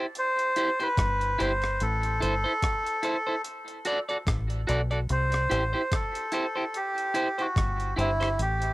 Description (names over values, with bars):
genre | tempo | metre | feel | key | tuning
roots reggae | 73 BPM | 4/4 | swing 57% on 16ths | C lydian | A4 = 437 Hz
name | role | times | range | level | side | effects
electric guitar at the edge of break-up | accompaniment | 0.0-8.3 s | E4 to D5 | -31 LUFS | right 1 dB | tape echo
melodica | melody | 0.2-8.7 s | E4 to C5 | -28 LUFS | equal | cassette tape, tape echo
breakbeat sampler-style drum kit | drums | 0.2-8.7 s | hi-hat, kick drum, rim click | -30 LUFS | equal | cassette tape
deep dub fingered electric bass | bass | 1.0-8.7 s | G1 to C2 | -28 LUFS | equal | none
room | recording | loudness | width
light reverb | home recording on cassette | -25 LUFS | side -18 dB against mid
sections
0.0-8.7 A section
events
none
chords
0.0 C; 3.4 D; 5.1 C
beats
0.15 0.98 | 1.80 2.62 3.45 4.27 | 5.09 5.92 6.74 7.56 | 8.39